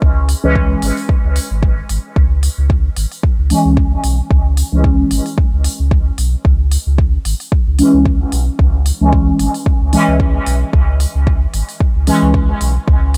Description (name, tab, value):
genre	dub techno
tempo	112 BPM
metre	4/4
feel	swing 56% on 16ths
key	C# minor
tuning	A4 = 440 Hz
part	warm sub bass	bass	0.0-13.2 s	G#1 to C#2	-17 LUFS	equal	sidechain pumping
part	electronic kick drum	drums	0.0-13.0 s	none	-16 LUFS	equal	none
part	electronic hi-hat	drums	0.3-13.2 s	none	-28 LUFS	equal	none
part	resonant sweep polysynth	stabs	0.4-12.3 s	E3 to C#4	-19 LUFS	equal	chorus, phaser, sidechain pumping, dub echo
room	digital ambience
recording	none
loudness	-14 LUFS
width	mono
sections	0.0-13.2 A section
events	none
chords	0.0 C#m